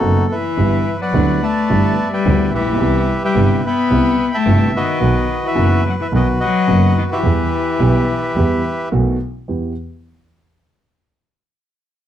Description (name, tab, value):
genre	tango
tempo	108 BPM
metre	4/4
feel	rubato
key	E minor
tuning	A4 = 440 Hz
part	bandoneon	melody	0.0-8.9 s	D#4 to B5	-20 LUFS	equal	none
part	dark upright piano	accompaniment	0.0-9.7 s	F#1 to G4	-20 LUFS	right 2 dB	none
part	dark double bass	bass	0.0-9.7 s	F#1 to E2	-19 LUFS	right 1 dB	none
part	rich cello	second line	0.3-8.9 s	D#3 to B3	-20 LUFS	left 7 dB	none
room	moderate club reverb, RT60 0.6 s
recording	dark, warm production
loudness	-14 LUFS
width	side -10 dB against mid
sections	0.0-9.5 A section; 9.5-11.7 B section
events	none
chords	0.0 B7; 0.6 G6; 2.8 Cmaj7; 5.0 B; 7.2 Em; 8.9 B7; 9.5 Em